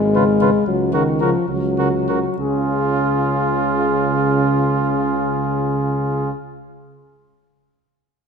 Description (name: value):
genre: classical, brass quintet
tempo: 65-79 BPM (dotted quarters)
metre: 6/8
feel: straight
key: Db major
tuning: A4 = 440 Hz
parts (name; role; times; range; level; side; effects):
- mellow French horn; accompaniment; 0.0-6.3 s; Db3 to Ab3; -21 LUFS; left 3 dB; none
- mellow tuba; bass; 0.0-6.3 s; Ab1 to Db2; -23 LUFS; right 5 dB; none
- mellow cornet; melody; 0.1-6.3 s; Ab4 to Cb5; -24 LUFS; left 9 dB; none
- clear trumpet; second line; 0.1-6.3 s; F4 to Gb4; -24 LUFS; right 7 dB; none
- warm trombone; accompaniment; 0.2-6.3 s; Db3; -25 LUFS; right 4 dB; none
room: moderate scoring stage reverb, RT60 1.8 s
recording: none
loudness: -16 LUFS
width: side -6 dB against mid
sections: 0.0-2.4 A section; 2.4-6.0 B section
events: slowing down 0.0-2.4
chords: 0.0 Db7; 0.7 Gb/Db; 2.4 Db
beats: | 0.66 1.49 | 2.38 3.29 | 4.19 5.10